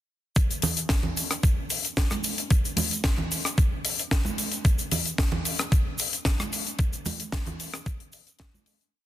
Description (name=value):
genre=nu-disco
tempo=112 BPM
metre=4/4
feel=straight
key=none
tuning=none
part: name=electronic kick drum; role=drums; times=0.4-8.5 s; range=none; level=-24 LUFS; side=equal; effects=none
part: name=tight funk drum kit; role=drums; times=0.4-8.9 s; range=hi-hat, rim click, shaker, snare drum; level=-28 LUFS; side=left 2 dB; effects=none
part: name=congas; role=percussion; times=0.6-8.6 s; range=none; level=-32 LUFS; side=right 3 dB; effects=none
room=light reverb, studio ambience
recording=dense, heavily limited modern master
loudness=-24 LUFS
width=side -13 dB against mid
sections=0.4-8.9 drop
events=drop 0.4-8.9; fade-out 6.1-8.9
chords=none